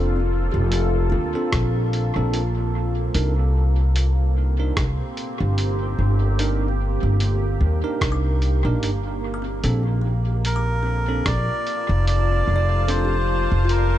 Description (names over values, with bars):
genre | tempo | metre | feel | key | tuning
ambient dub | 74 BPM | 4/4 | swing 57% on 16ths | unclear | A4 = 440 Hz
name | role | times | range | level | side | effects
deep dark ambient pad | sustained chords | 0.0-14.0 s | Bb3 to A5 | -28 LUFS | equal | chorus, built-in reverb
kalimba | arpeggios | 0.0-2.7, 8.1-14.0 s | Bb3 to F6 | -34 LUFS | left 3 dB | dub echo
bell-like tine electric piano | stabs | 0.0-13.2 s | C4 to Bb4 | -31 LUFS | right 3 dB | fast stereo tremolo, dub echo
upright bass | bass | 0.0-14.0 s | F1 to Eb2 | -20 LUFS | equal | none
lo-fi sampler-style drum kit | drums | 0.7-13.9 s | hi-hat, rim click | -30 LUFS | equal | small room ambience, dub echo
electronic kick drum | drums | 1.5-11.4 s | none | -25 LUFS | equal | small room ambience
melodica | melody | 10.5-14.0 s | Bb4 to D5 | -25 LUFS | right 1 dB | dub echo
room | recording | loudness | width
studio ambience | nothing above 10.5 kHz | -19 LUFS | side -12 dB against mid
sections
0.0-14.0 A section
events
none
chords
0.0 Bbmaj9; 3.1 Cm9; 9.6 Bbmaj9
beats
0.72 1.53 2.34 | 3.15 3.96 4.77 5.58 | 6.39 7.20 8.01 8.82 | 9.63 10.45 11.26 12.07 | 12.88 13.69